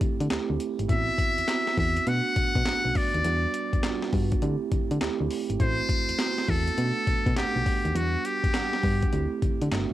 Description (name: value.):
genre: R&B, new jack swing.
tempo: 102 BPM.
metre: 4/4.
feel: swing 66% on 16ths.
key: A dorian.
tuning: A4 = 440 Hz.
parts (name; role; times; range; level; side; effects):
mellow tine electric piano; accompaniment; 0.0-9.9 s; F#3 to F#5; -31 LUFS; right 7 dB; slow stereo tremolo, cassette tape, plate reverb.
solid FM bass; bass; 0.0-9.9 s; G1 to D3; -28 LUFS; left 1 dB; transformer saturation.
breakbeat sampler-style drum kit; drums; 0.0-9.9 s; handclaps, hi-hat, kick drum, snare drum; -28 LUFS; left 1 dB; cassette tape.
trumpet with metal mute; melody; 0.9-9.4 s; F#4 to F#5; -28 LUFS; left 1 dB; plate reverb.
room: light reverb.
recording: home recording on cassette.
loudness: -23 LUFS.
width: side -14 dB against mid.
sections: 0.0-9.9 A section.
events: none.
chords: 0.0 D7sus4; 0.9 Am69; 2.1 Bm7; 3.2 Em9; 4.4 D7sus4; 5.6 Am69; 6.8 Bm7; 8.0 Em9; 9.1 D7sus4.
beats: 0.30 | 0.89 1.48 2.07 2.66 | 3.25 3.83 4.42 5.01 | 5.60 6.19 6.78 7.36 | 7.95 8.54 9.13 9.72.